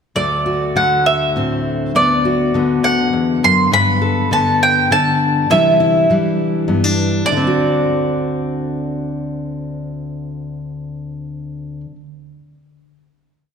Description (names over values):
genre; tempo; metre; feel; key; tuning
indie folk with a building arrangement; 68 BPM (dotted quarters); 6/8; straight; D mixolydian; A4 = 440 Hz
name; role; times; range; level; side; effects
mandolin; melody; 0.2-11.8 s; D5 to C6; -16 LUFS; right 1 dB; analog delay
fingerpicked steel-string acoustic guitar; accompaniment; 0.2-12.1 s; D2 to A4; -18 LUFS; left 2 dB; none
room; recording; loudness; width
moderate concert hall reverb, RT60 2.3 s; none; -13 LUFS; side -6 dB against mid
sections
0.2-7.3 breakdown; 7.3-10.8 final chord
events
none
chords
0.2 D7; 1.9 Bm/D; 3.7 Gadd9; 5.5 Cadd9; 7.3 D7